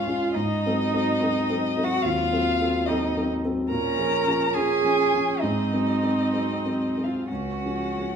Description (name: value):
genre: classical, slow romantic movement for piano quartet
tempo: 59-73 BPM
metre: 4/4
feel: rubato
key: unclear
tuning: A4 = 439 Hz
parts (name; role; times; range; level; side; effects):
- muted violin; melody; 0.0-8.2 s; Eb5 to Bb5; -29 LUFS; left 9 dB; none
- muted cello; second line; 0.0-8.2 s; Eb4 to Bb4; -26 LUFS; right 6 dB; none
- dark concert grand piano; accompaniment; 0.0-8.2 s; Db2 to A4; -26 LUFS; left 2 dB; none
- muted viola; accompaniment; 0.0-8.2 s; Ab3 to Db4; -31 LUFS; right 2 dB; none
room: wet recital hall reverb, RT60 1.5 s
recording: minimal, uncompressed stereo recording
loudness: -22 LUFS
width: side -7 dB against mid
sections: 0.0-8.2 A section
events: none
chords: 0.3 Ab7b9; 3.7 Bbm7; 5.4 Ab7; 7.3 Db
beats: | 0.34 1.20 2.03 2.87 | 3.70 4.53 5.41 6.32 | 7.29